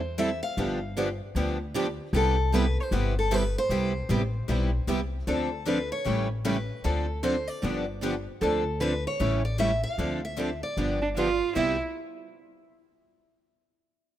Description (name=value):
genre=acoustic string swing (jazz manouche)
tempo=153 BPM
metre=4/4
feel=swing 62% on 8ths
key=C major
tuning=A4 = 440 Hz
part: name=picked steel-string acoustic guitar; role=melody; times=0.0-11.8 s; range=A4 to F5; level=-31 LUFS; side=equal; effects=none
part: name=upright bass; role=bass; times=0.0-11.8 s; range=G1 to E2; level=-30 LUFS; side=left 1 dB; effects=none
part: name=picked steel-string acoustic guitar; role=accompaniment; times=0.2-11.8 s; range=C3 to A4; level=-33 LUFS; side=left 5 dB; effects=none
part: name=picked steel-string acoustic guitar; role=accompaniment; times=0.2-11.8 s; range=C3 to A4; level=-31 LUFS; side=right 5 dB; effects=none
part: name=rich violin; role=second line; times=11.0-11.8 s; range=D4 to F4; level=-27 LUFS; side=right 5 dB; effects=slapback echo
room=light reverb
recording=rough home demo mix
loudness=-25 LUFS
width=side -12 dB against mid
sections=0.0-5.3 A section; 5.3-11.6 B section; 11.6-13.1 C section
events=none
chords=0.0 Am7; 0.6 G7; 2.1 Cmaj7; 5.3 Dm7; 6.1 A7; 6.8 Dm7; 7.6 G7; 8.4 Dm7; 9.2 A7; 10.0 Dm7; 10.8 G7; 11.6 Cmaj7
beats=0.17 | 0.57 0.96 1.35 1.74 | 2.13 2.53 2.92 3.31 | 3.70 4.09 4.49 4.88 | 5.27 5.67 6.06 6.45 | 6.84 7.24 7.63 8.02 | 8.41 8.81 9.20 9.59 | 9.99 10.38 10.77 11.16 | 11.56